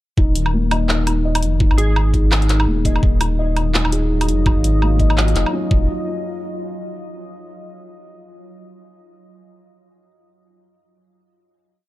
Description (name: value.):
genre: half-time drum and bass.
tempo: 168 BPM.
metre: 4/4.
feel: swing 58% on 16ths, half-time.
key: Eb minor.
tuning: A4 = 440 Hz.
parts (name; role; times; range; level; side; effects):
felt-muted upright piano; arpeggios; 0.2-5.9 s; Eb3 to Eb5; -23 LUFS; left 2 dB; vintage 12-bit sampler grit, dub echo.
saturated sub bass; bass; 0.2-5.9 s; Eb1 to Ab1; -18 LUFS; equal; none.
electronic kick drum; drums; 0.2-5.8 s; none; -16 LUFS; equal; none.
drum and bass drum kit; drums; 0.4-5.5 s; handclaps, hi-hat, woodblock; -22 LUFS; right 1 dB; none.
glassy wavetable pluck; melody; 1.8-2.1 s; Ab4; -32 LUFS; equal; chorus, cassette tape, dub echo.
deep dark ambient pad; sustained chords; 3.7-5.9 s; Gb3 to Eb5; -28 LUFS; equal; chorus, built-in reverb, vintage 12-bit sampler grit, sidechain pumping.
room: light reverb.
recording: dark, warm production.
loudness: -15 LUFS.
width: side -16 dB against mid.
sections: 0.2-5.9 drop; 5.9-7.3 final hit.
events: drop 0.2-5.9.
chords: 0.2 Ebmadd9; 5.9 N.C..